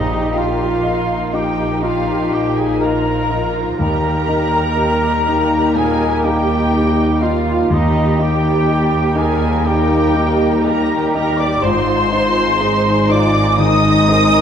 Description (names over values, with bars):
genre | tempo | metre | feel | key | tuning
cinematic, emotional film score for orchestra | 61 BPM | 4/4 | rubato | unclear | A4 = 441 Hz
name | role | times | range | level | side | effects
muted symphonic violin section | melody | 0.0-14.4 s | Eb5 to Eb6 | -23 LUFS | left 4 dB | none
bright small flute group | second line | 0.0-14.4 s | Eb5 to Eb6 | -27 LUFS | left 2 dB | none
dark cor anglais | second line | 0.0-14.4 s | Eb4 to Eb5 | -23 LUFS | right 3 dB | none
muted symphonic violin section | second line | 0.0-14.4 s | G3 to Eb4 | -26 LUFS | left 2 dB | none
muted symphonic viola section | accompaniment | 0.0-14.4 s | Eb4 to Eb5 | -22 LUFS | right 2 dB | none
warm grand piano | accompaniment | 0.0-14.4 s | Bb1 to Eb5 | -20 LUFS | left 2 dB | none
mellow French horn section | sustained chords | 0.0-14.4 s | F3 to Eb4 | -21 LUFS | left 3 dB | none
muted symphonic cello section | bass | 0.0-14.4 s | Eb4 to Bb4 | -25 LUFS | right 4 dB | none
muted symphonic double bass section | bass | 0.0-14.4 s | Ab1 to Eb2 | -21 LUFS | right 3 dB | none
room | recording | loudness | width
wet scoring stage reverb, RT60 1.8 s | dark, warm production | -13 LUFS | side -8 dB against mid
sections
0.0-14.4 A section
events
none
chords
0.0 Bbsus4; 3.8 Eb; 11.6 Ab